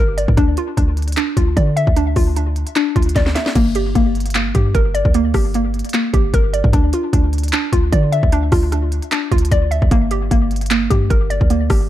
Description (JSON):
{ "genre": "hip hop, trap", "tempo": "151 BPM", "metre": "4/4", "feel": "half-time", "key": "unclear", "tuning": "A4 = 439 Hz", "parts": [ { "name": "hollow square pluck", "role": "arpeggios", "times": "0.0-11.9 s", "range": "Bb3 to E5", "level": "-19 LUFS", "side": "equal", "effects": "chorus, low-pass filter, ping-pong delay" }, { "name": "warm 808-style bass", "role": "bass", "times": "0.0-11.9 s", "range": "G1 to D3", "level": "-18 LUFS", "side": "equal", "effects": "none" }, { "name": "trap drum kit", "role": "drums", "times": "0.2-11.8 s", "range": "crash cymbal, handclaps, hi-hat, kick drum, rim click, snare drum", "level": "-17 LUFS", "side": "equal", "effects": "none" } ], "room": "little or no reverb", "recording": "dark, warm production", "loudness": "-14 LUFS", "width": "side -13 dB against mid", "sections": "0.0-3.6 A section; 3.6-11.9 B section", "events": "drum fill 3.2-3.6", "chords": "0.4 Dmadd9; 3.6 Gm; 6.7 Dmadd9; 9.9 Gm" }